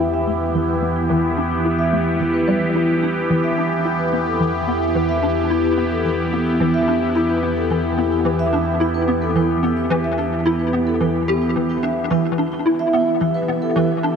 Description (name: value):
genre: ambient, sequencer-driven space music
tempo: 109 BPM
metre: 4/4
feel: straight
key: E minor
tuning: A4 = 443 Hz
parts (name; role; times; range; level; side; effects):
- phased analog pad; sustained chords; 0.0-14.2 s; E3 to G4; -20 LUFS; right 1 dB; phaser, chorus
- hollow square pluck; riff; 0.0-14.2 s; E3 to G4; -22 LUFS; equal; ensemble chorus, ping-pong delay
- analog drone; bass; 0.0-12.1 s; E2; -28 LUFS; equal; chorus
- vibraphone with soft mallets; arpeggios; 0.1-14.2 s; B3 to E5; -24 LUFS; moving between left 7 dB and equal; auto-pan, low-pass filter, ping-pong delay
- pulsing gated texture; texture; 12.6-14.2 s; E5; -28 LUFS; right 3 dB; chorus, built-in reverb
room: wet cathedral reverb, RT60 5.3 s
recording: in a vast, echoing space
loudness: -17 LUFS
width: side -6 dB against mid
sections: 0.0-12.1 A section; 12.1-14.2 B section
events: filter sweep on synth arpeggio sound 0.0-12.1; filter sweep on vibraphone 0.0-12.1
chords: 0.0 Em7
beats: 0.00 0.55 | 1.10 1.65 2.20 2.75 | 3.30 3.85 4.40 4.95 | 5.50 6.05 6.60 7.15 | 7.70 8.25 8.80 9.36 | 9.91 10.46 11.01 11.56 | 12.11 12.66 13.21 13.76